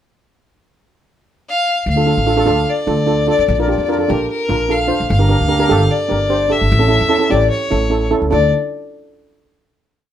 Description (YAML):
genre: calypso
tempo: 149 BPM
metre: 4/4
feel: straight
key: D minor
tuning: A4 = 440 Hz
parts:
  - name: rich fiddle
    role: melody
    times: 1.5-8.5 s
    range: Bb4 to F5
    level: -18 LUFS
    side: left 4 dB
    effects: none
  - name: upright bass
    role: bass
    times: 1.9-8.5 s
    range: G1 to F2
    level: -17 LUFS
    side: equal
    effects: none
  - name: steel pan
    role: accompaniment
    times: 2.0-8.5 s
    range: C#4 to C5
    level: -17 LUFS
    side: right 3 dB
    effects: none
room: moderate studio reverb, RT60 0.5 s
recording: minimal, uncompressed stereo recording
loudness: -13 LUFS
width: side -10 dB against mid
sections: 0.3-1.9 pickup bar; 1.9-8.3 verse; 8.3-9.9 final chord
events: none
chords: 0.3 N.C.; 1.9 Dm; 3.5 Bb; 5.1 Gm; 6.7 A; 8.3 Dm